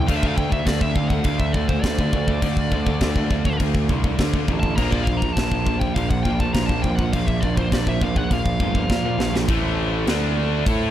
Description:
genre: heavy metal.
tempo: 102 BPM.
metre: 4/4.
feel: straight.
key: unclear.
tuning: A4 = 441 Hz.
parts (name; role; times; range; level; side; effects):
high-gain lead guitar; melody; 0.0-9.4 s; C5 to Bb5; -29 LUFS; equal; distortion, digital delay.
brassy analog pad; sustained chords; 0.0-10.9 s; D3 to F5; -33 LUFS; equal; chorus.
high-gain distorted guitar; riff; 0.0-10.9 s; A2 to A4; -28 LUFS; left 14 dB; distortion.
high-gain distorted guitar; riff; 0.0-10.9 s; A2 to A4; -27 LUFS; right 9 dB; distortion.
fuzz picked electric bass; bass; 0.0-10.9 s; G1 to D3; -24 LUFS; equal; overdrive.
tight metal drum kit; drums; 0.1-10.8 s; crash cymbal, kick drum, snare drum; -23 LUFS; equal; none.
room: little or no reverb.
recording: dark, warm production.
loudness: -18 LUFS.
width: side -12 dB against mid.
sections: 0.0-9.5 A section; 9.5-10.9 B section.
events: lead electric guitar solo 0.0-9.5; drum fill 8.9-9.5.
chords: 0.1 Dm; 4.8 Bb; 9.5 Am; 10.1 D5.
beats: | 0.08 0.67 1.25 1.84 | 2.42 3.01 3.60 4.19 | 4.77 5.36 5.95 6.54 | 7.13 7.72 8.31 8.90 | 9.49 10.08 10.67.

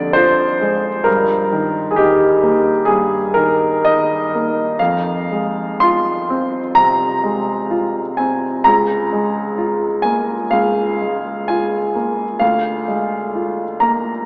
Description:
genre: classical, romantic nocturne for solo piano.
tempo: 63 BPM.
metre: 4/4.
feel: uneven beats, rubato.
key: unclear.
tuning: A4 = 440 Hz.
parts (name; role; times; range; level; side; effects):
warm grand piano; solo; 0.0-14.3 s; Db2 to C6; -17 LUFS; equal; none.
room: wet cathedral reverb, RT60 6.0 s.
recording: in a vast, echoing space, AM radio sound.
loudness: -17 LUFS.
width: mono.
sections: 0.0-14.3 A section.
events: none.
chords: 0.0 Ddim/F; 1.1 Eb/G; 4.8 Fm; 8.7 Bbm7/Db; 12.4 Bb7/D.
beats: 0.17 | 1.07 1.98 2.87 3.86 | 4.79 5.81 6.76 7.70 | 8.65 9.57 10.52 11.49 | 12.41 13.34.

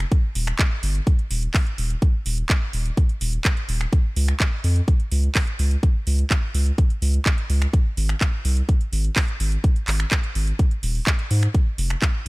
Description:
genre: progressive house.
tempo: 126 BPM.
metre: 4/4.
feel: straight.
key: Ab major.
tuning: A4 = 440 Hz.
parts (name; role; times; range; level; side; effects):
saturated sub bass; bass; 0.0-12.3 s; Eb1 to Ab2; -20 LUFS; equal; sidechain pumping.
house drum kit; drums; 0.0-12.3 s; finger snaps, handclaps, hi-hat; -26 LUFS; right 1 dB; none.
electronic kick drum; drums; 0.1-12.1 s; none; -19 LUFS; equal; none.
room: little or no reverb.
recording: none.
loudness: -19 LUFS.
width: side -23 dB against mid.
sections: 0.0-12.3 A section.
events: none.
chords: none.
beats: | 0.12 0.59 1.07 1.54 | 2.02 2.50 2.97 3.45 | 3.93 4.40 4.88 5.35 | 5.83 6.31 6.78 7.26 | 7.74 8.21 8.69 9.16 | 9.64 10.12 10.59 11.07 | 11.54 12.02.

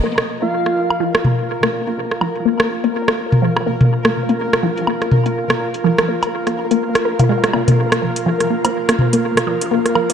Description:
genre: minimal techno.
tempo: 124 BPM.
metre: 4/4.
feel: swing 59% on 16ths.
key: unclear.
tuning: A4 = 438 Hz.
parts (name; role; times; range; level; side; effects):
resonant blip pluck; riff; 0.0-10.1 s; F3 to Bb4; -20 LUFS; left 2 dB; phaser, vintage 12-bit sampler grit, analog delay.
round analog bass; bass; 0.0-9.8 s; F1 to Bb2; -28 LUFS; equal; none.
airy breathy pad; texture; 0.4-10.1 s; F4 to F5; -24 LUFS; right 1 dB; chorus.
pulsing gated texture; texture; 0.0-10.1 s; Bb4; -27 LUFS; equal; chorus, built-in reverb.
electronic hi-hat; drums; 0.2-10.1 s; none; -29 LUFS; right 1 dB; low-pass filter on hats, low-pass filter on snare.
booming analog drum machine; percussion; 0.2-10.1 s; rim click, toms, woodblock; -17 LUFS; equal; analog delay.
airy dreamy lead; melody; 0.4-1.1 s; F4; -21 LUFS; right 1 dB; chorus, cassette tape, analog delay.
filtered dub chord stab; stabs; 8.0-10.1 s; F3 to Bb4; -24 LUFS; right 5 dB; phaser, wide subtle chorus, analog delay.
room: wet echo chamber reverb, RT60 2.0 s.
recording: echo-heavy mix.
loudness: -14 LUFS.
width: side -8 dB against mid.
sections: 0.0-10.1 A section.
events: filter sweep on drum 0.0-10.1; filter sweep on synth arpeggio sound 0.0-10.1.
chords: 0.0 Bb5.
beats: | 0.04 0.52 1.00 1.49 | 1.97 2.45 2.94 3.42 | 3.91 4.39 4.87 5.36 | 5.84 6.33 6.81 7.29 | 7.78 8.26 8.74 9.23 | 9.71.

